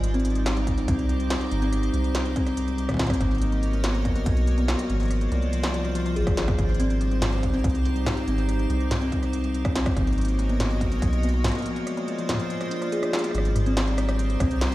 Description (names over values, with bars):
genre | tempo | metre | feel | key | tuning
IDM | 142 BPM | 4/4 | straight | Ab lydian | A4 = 439 Hz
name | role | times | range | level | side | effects
icy glass pad | sustained chords | 0.0-14.7 s | Ab3 to D#5 | -31 LUFS | right 1 dB | chorus, built-in reverb
kalimba | arpeggios | 0.0-14.7 s | F3 to Ab4 | -28 LUFS | left 2 dB | digital delay
round analog bass | bass | 0.0-14.7 s | Ab1 to C2 | -25 LUFS | equal | none
industrial drum kit | drums | 0.0-14.7 s | hi-hat, rim click, snare drum, toms | -30 LUFS | equal | digital delay
electronic kick drum | drums | 0.7-11.1, 14.4-14.5 s | none | -27 LUFS | equal | distortion
room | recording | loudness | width
light reverb | played on a big sound system in a bare room, stone room reverb | -22 LUFS | side -16 dB against mid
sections
0.0-13.3 A section; 13.3-14.7 B section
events
break 11.7-13.3; drum fill 13.1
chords
0.0 Abmaj7; 3.2 Bmaj9/Ab; 4.9 Bb7/Ab (rootless); 6.6 Abmaj7; 10.0 Bmaj9/Ab; 11.7 Bb7; 13.3 Abmaj7